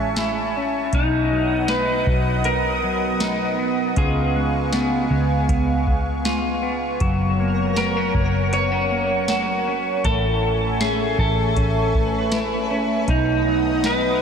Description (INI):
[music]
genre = dream pop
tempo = 79 BPM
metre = 4/4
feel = straight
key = unclear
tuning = A4 = 445 Hz
[part]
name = clean electric guitar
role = melody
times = 0.0-14.2 s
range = C#4 to C#5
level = -24 LUFS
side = equal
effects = wide subtle chorus, ping-pong delay
[part]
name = phased analog pad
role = sustained chords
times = 0.0-14.2 s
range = A3 to D#6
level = -24 LUFS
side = right 2 dB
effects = phaser, chorus
[part]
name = semi-hollow electric guitar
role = arpeggios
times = 0.0-14.2 s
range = A2 to F#4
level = -25 LUFS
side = left 2 dB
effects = analog chorus, ping-pong delay
[part]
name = vintage muted picked electric bass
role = bass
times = 0.0-14.2 s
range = F#1 to C#2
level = -25 LUFS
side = equal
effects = none
[part]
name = soft vintage rhythm box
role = drums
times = 0.2-14.0 s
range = hi-hat, kick drum, snare drum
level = -26 LUFS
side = equal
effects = overdrive
[part]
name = twinkling granular texture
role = texture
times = 7.3-14.1 s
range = D#4 to C#5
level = -34 LUFS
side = right 1 dB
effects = built-in reverb, ensemble chorus, ping-pong delay
[sound]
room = wet huge ambient reverb, RT60 8.7 s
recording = dreamy mix soaked in reverb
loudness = -18 LUFS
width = side -7 dB against mid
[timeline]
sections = 0.0-14.2 A section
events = none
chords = 0.0 Amaj7; 0.9 B; 4.0 C#7; 7.0 F#; 10.0 Amaj7; 13.1 B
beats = 0.17 | 0.93 1.69 2.45 3.21 | 3.97 4.73 5.49 6.25 | 7.01 7.77 8.53 9.29 | 10.05 10.81 11.57 12.32 | 13.09 13.84